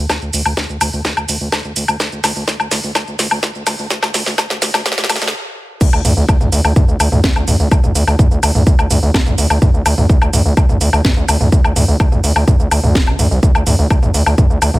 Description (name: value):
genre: melodic techno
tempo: 126 BPM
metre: 4/4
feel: straight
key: unclear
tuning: A4 = 441 Hz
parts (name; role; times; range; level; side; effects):
- gritty driven synth bass; bass; 0.0-14.8 s; D1 to D2; -16 LUFS; equal; sidechain pumping
- electronic kick drum; drums; 0.1-14.5 s; none; -13 LUFS; equal; high-pass filter on kick, high-pass filter on room
- house drum kit; drums; 0.1-14.8 s; crash cymbal, hi-hat, shaker, snare drum, toms, woodblock; -16 LUFS; equal; high-pass filter on snare, high-pass filter on perc, high-pass filter on hats, high-pass filter on toms, high-pass filter on cymbals, high-pass filter on room
room: little or no reverb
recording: high-pass filter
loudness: -12 LUFS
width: side -18 dB against mid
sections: 0.0-5.8 A section; 5.8-14.8 B section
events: build-up 0.0-5.8; drum fill 0.0-5.3; stop 5.3-5.8; drop 5.8-14.8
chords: none